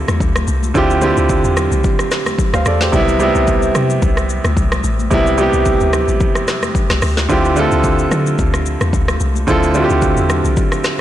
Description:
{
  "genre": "amapiano",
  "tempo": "110 BPM",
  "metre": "4/4",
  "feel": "swing 55% on 16ths",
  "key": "unclear",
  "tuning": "A4 = 438 Hz",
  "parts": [
    { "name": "warm grand piano", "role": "accompaniment", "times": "0.0-11.0 s", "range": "C3 to F5", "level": "-16 LUFS", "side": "right 2 dB", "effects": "none" },
    { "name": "deep log drum bass", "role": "bass", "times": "0.0-10.6 s", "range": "A1 to D3", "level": "-18 LUFS", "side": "left 1 dB", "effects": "none" },
    { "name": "afro-pop drum kit", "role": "drums", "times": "0.1-11.0 s", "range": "hi-hat, kick drum, rim click, shaker, snare drum", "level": "-18 LUFS", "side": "left 1 dB", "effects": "soft clipping on snare, vintage 12-bit sampler grit" },
    { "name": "congas", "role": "percussion", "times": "0.1-10.7 s", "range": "none", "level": "-27 LUFS", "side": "left 6 dB", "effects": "none" }
  ],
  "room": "light reverb",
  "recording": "blown-out, overdriven recording, overdrive",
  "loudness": "-12 LUFS",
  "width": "side -12 dB against mid",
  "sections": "0.0-11.0 A section",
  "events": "none",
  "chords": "0.0 Dm11; 2.9 Am9 (rootless); 7.3 Dm11"
}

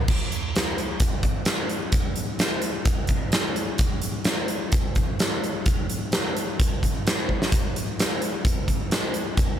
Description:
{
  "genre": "rock",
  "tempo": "129 BPM",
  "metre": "4/4",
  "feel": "straight",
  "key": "none",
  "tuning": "none",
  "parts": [
    { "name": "huge arena drum kit", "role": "drums", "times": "0.1-9.5 s", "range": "crash cymbal, hi-hat, kick drum, snare drum", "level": "-22 LUFS", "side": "equal", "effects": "none" }
  ],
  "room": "little or no reverb",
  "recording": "none",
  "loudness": "-22 LUFS",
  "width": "side -10 dB against mid",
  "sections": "0.1-9.6 A section",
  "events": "drum fill 7.3",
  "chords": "none"
}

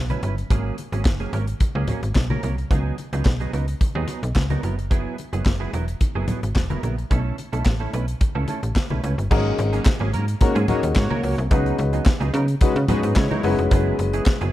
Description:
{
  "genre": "early-eighties boogie funk",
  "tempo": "109 BPM",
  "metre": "4/4",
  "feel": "straight",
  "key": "G# minor",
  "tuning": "A4 = 440 Hz",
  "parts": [
    { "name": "slap-like FM bass", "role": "bass", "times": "0.0-14.5 s", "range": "E1 to C#3", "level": "-24 LUFS", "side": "equal", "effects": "none" },
    { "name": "semi-hollow electric guitar", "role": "riff", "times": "0.1-14.5 s", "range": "F#3 to B4", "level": "-30 LUFS", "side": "right 5 dB", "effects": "ensemble chorus" },
    { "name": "modern studio drum kit", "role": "drums", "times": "0.1-14.5 s", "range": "crash cymbal, handclaps, hi-hat, kick drum, snare drum", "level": "-21 LUFS", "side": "equal", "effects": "none" },
    { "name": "congas", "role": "percussion", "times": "0.1-14.4 s", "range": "none", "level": "-30 LUFS", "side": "left 2 dB", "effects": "none" },
    { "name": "warm grand piano", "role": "accompaniment", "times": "9.3-14.3 s", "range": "G#3 to B4", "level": "-24 LUFS", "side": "left 4 dB", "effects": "none" },
    { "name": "analog synth brass", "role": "second line", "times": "10.4-13.6 s", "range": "G#3 to C#5", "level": "-28 LUFS", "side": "equal", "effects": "chorus" }
  ],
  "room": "light reverb",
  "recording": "dark, warm production",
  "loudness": "-19 LUFS",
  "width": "side -14 dB against mid",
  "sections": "0.0-9.3 A section; 9.3-14.5 B section",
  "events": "none",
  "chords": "0.0 Bsus4; 0.5 G#9sus4; 2.7 C#9sus4; 4.6 F#9sus4; 7.1 B9sus4; 9.3 G#9sus4; 11.5 C#9sus4; 13.4 F#9sus4"
}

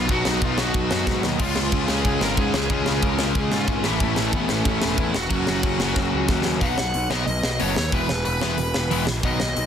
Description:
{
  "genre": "punk rock",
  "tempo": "184 BPM",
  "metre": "4/4",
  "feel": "straight",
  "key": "unclear",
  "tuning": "A4 = 440 Hz",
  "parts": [
    { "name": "smooth overdriven lead guitar", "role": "melody", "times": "0.0-9.7 s", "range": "A3 to F#5", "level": "-27 LUFS", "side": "equal", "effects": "none" },
    { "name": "cranked stack guitar", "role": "riff", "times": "0.0-9.4 s", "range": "E2 to C#4", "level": "-28 LUFS", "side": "right 13 dB", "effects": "overdrive" },
    { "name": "distorted electric guitar", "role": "riff", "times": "0.0-9.4 s", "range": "A2 to F#4", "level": "-26 LUFS", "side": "left 10 dB", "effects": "overdrive" },
    { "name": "fuzz picked electric bass", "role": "bass", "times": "0.0-9.7 s", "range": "E1 to G#2", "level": "-27 LUFS", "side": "equal", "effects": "overdrive" },
    { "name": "tight metal drum kit", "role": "drums", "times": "0.1-9.6 s", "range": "crash cymbal, hi-hat, kick drum, snare drum", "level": "-25 LUFS", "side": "equal", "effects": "none" },
    { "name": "overdriven electric guitar", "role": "riff", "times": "1.4-6.6 s", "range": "F#2 to C#4", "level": "-31 LUFS", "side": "equal", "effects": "none" }
  ],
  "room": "little or no reverb",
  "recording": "dense, heavily limited modern master",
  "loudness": "-20 LUFS",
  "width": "side -8 dB against mid",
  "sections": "0.0-6.6 A section; 6.6-9.7 B section",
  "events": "drum fill 1.1-1.4, 6.0-6.6",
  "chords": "0.0 B; 1.4 C#; 3.8 A; 5.3 F#; 6.6 B; 7.9 E"
}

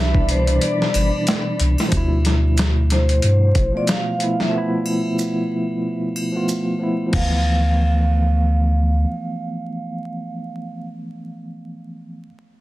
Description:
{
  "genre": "trip hop",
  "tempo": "92 BPM",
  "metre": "4/4",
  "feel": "swing 57% on 16ths",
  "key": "D dorian",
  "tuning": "A4 = 442 Hz",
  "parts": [
    { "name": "vibraphone with medium mallets", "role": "melody", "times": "0.0-10.9 s", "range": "C5 to F5", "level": "-26 LUFS", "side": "equal", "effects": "tape echo" },
    { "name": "tine electric piano", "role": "accompaniment", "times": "0.0-12.3 s", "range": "B2 to F4", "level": "-23 LUFS", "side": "equal", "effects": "tremolo, vintage 12-bit sampler grit, low-pass filter, tape echo" },
    { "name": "muted chamber string section", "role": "sustained chords", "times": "0.0-1.9 s", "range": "E3 to B5", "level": "-32 LUFS", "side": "left 2 dB", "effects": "none" },
    { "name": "soft dub sub bass", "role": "bass", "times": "0.0-9.1 s", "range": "G1 to G2", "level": "-17 LUFS", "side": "equal", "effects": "none" },
    { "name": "flickering grainy texture", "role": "texture", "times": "0.0-1.9 s", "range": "D4", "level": "-34 LUFS", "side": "right 1 dB", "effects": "none" },
    { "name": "dusty soul sampler-style drum kit", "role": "drums", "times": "0.1-7.3 s", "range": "crash cymbal, hi-hat, kick drum, snare drum", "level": "-22 LUFS", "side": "equal", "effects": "overdrive" },
    { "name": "triangle and maracas", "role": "percussion", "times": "0.9-6.6 s", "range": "none", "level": "-34 LUFS", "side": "equal", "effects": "none" }
  ],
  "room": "light reverb",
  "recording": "dense, heavily limited modern master, vinyl crackle",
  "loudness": "-17 LUFS",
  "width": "side -17 dB against mid",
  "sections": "0.0-1.9 A section; 1.9-7.1 B section; 7.1-9.7 C section",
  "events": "filter sweep on tine electric piano 1.9-7.1",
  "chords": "0.0 Cmaj9; 1.9 Dm69"
}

